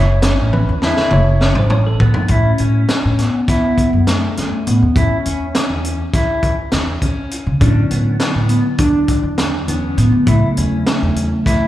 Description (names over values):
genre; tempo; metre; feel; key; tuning
progressive instrumental, band music in an uneven meter; 203 BPM (eighths); 9/8; straight; A major; A4 = 440 Hz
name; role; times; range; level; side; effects
bell-like tine electric piano; accompaniment; 0.0-2.1, 7.6-11.7 s; C#3 to C#5; -22 LUFS; right 1 dB; fast stereo tremolo
mellow electric guitar; arpeggios; 0.0-11.7 s; B3 to E4; -22 LUFS; equal; slapback echo
upright bass; bass; 0.0-11.2 s; F#1 to C#3; -16 LUFS; equal; none
crunchy breakbeat drum kit; drums; 0.2-11.6 s; hi-hat, kick drum, snare drum, toms; -18 LUFS; equal; none
hollow square lead; melody; 2.3-11.7 s; A3 to D4; -20 LUFS; equal; chorus, slapback echo, digital delay
room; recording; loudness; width
light reverb, small room ambience; live gig heard through the venue's PA, club reverb; -13 LUFS; side -14 dB against mid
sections
0.0-2.3 A section; 2.3-11.7 B section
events
tine electric piano solo 0.0-2.3; drum fill 0.5-2.3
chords
0.0 Aadd9; 7.6 Dmaj13; 10.3 Aadd9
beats
0.23 0.53 0.82 1.12 1.41 1.71 2.00 | 2.30 2.59 2.89 3.18 3.48 3.77 4.07 4.36 4.66 | 4.96 5.25 5.55 5.84 6.14 6.43 6.73 7.02 7.32 | 7.62 7.91 8.21 8.50 8.80 9.09 9.39 9.69 9.98 | 10.28 10.57 10.87 11.17 11.46